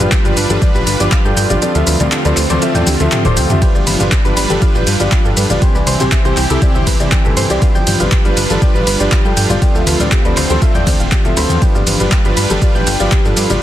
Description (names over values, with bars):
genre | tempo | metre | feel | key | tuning
progressive house | 120 BPM | 4/4 | straight | G mixolydian | A4 = 440 Hz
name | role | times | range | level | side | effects
supersaw pad | sustained chords | 0.0-13.6 s | C3 to B4 | -21 LUFS | right 2 dB | sidechain pumping
soft round pluck | arpeggios | 0.0-13.6 s | E4 to G6 | -22 LUFS | right 1 dB | chorus, sidechain pumping, tape echo
warm concert grand piano | stabs | 0.0-13.6 s | E3 to E5 | -18 LUFS | left 1 dB | sidechain pumping, tape echo
fat analog bass | bass | 0.0-13.6 s | D1 to G2 | -18 LUFS | equal | sidechain pumping
deep house drum kit | drums | 0.0-13.6 s | handclaps, hi-hat, ride cymbal, shaker, toms | -19 LUFS | equal | sidechain pumping on hats, sidechain pumping on perc, sidechain pumping on toms, sidechain pumping on cymbals
congas | percussion | 0.0-13.6 s | none | -24 LUFS | left 2 dB | none
electronic kick drum | drums | 0.1-13.2 s | none | -13 LUFS | equal | overdrive
room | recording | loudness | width
little or no reverb | dense, heavily limited modern master | -11 LUFS | side -12 dB against mid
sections
0.0-13.6 A section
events
kick drops out 1.6-3.6; drum fill 2.9-3.6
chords
0.0 G7; 1.6 Dm7; 3.6 G7; 5.6 C; 7.6 G7; 9.6 Dm7; 11.6 G7